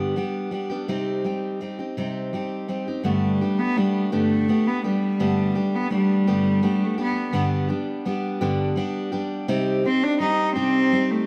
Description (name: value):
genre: acoustic folk duo or small band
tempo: 56 BPM (dotted quarters)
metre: 6/8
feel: straight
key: G major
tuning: A4 = 440 Hz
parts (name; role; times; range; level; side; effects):
- picked steel-string acoustic guitar; accompaniment; 0.0-11.3 s; G2 to G4; -27 LUFS; equal; none
- rich cello; melody; 3.0-11.3 s; G3 to Eb4; -23 LUFS; equal; tape echo
room: moderate studio reverb, RT60 0.7 s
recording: none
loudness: -23 LUFS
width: mono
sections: 0.0-3.1 A section; 3.1-11.3 B section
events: cello solo 3.1-11.3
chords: 0.0 G; 0.9 Cm; 3.1 Gadd9; 7.4 G; 9.5 Cm